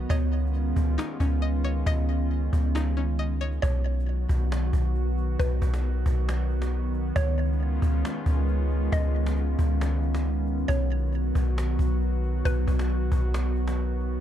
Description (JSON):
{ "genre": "hip hop, atmospheric cloud-rap", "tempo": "136 BPM", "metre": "4/4", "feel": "half-time", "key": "B lydian", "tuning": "A4 = 440 Hz", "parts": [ { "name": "warbly tape-like pad", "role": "sustained chords", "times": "0.0-14.2 s", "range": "D#3 to F#4", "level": "-30 LUFS", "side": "right 2 dB", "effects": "chorus, built-in reverb" }, { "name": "string-like resonator pluck", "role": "arpeggios", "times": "0.0-3.6 s", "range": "B3 to D#5", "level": "-37 LUFS", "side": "left 6 dB", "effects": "chorus, digital delay" }, { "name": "soft 808-style bass", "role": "bass", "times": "0.0-14.2 s", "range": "B1 to C#2", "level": "-25 LUFS", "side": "equal", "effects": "none" }, { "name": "mallet-like synth pluck", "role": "melody", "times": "0.1-12.9 s", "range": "B4 to D#5", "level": "-35 LUFS", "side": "right 1 dB", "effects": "chorus, phaser, digital delay" }, { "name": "cajon", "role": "drums", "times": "0.1-14.1 s", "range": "none", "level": "-36 LUFS", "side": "equal", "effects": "none" } ], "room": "little or no reverb", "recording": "dark, warm production", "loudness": "-24 LUFS", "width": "side -11 dB against mid", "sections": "0.0-3.6 A section; 3.6-14.2 B section", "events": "none", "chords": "0.1 C#9; 3.6 B; 7.2 C#9; 10.7 B" }